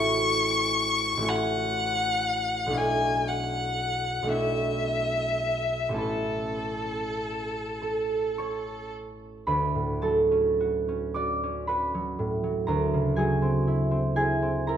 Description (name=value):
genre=classical, impressionist duo for violin and harp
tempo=32-41 BPM (dotted quarters)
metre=6/8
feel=rubato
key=A major, D major from 9.5 s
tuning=A4 = 438 Hz
part: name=rich violin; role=melody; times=0.0-8.9 s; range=A4 to C#6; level=-27 LUFS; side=left 2 dB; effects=none
part: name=concert harp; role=accompaniment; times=0.0-14.8 s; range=A1 to D6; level=-26 LUFS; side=right 1 dB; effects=none
room=wet recital hall reverb, RT60 1.5 s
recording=minimal, uncompressed stereo recording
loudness=-24 LUFS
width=side -9 dB against mid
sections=0.0-9.5 A section; 9.5-14.8 B section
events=none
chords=0.0 F#m7/A; 6.0 Aadd9; 9.5 Dmaj7; 12.7 F#7#11/D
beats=1.29 | 2.77 4.33 | 6.00 7.83 | 9.48 11.15 | 12.68 14.17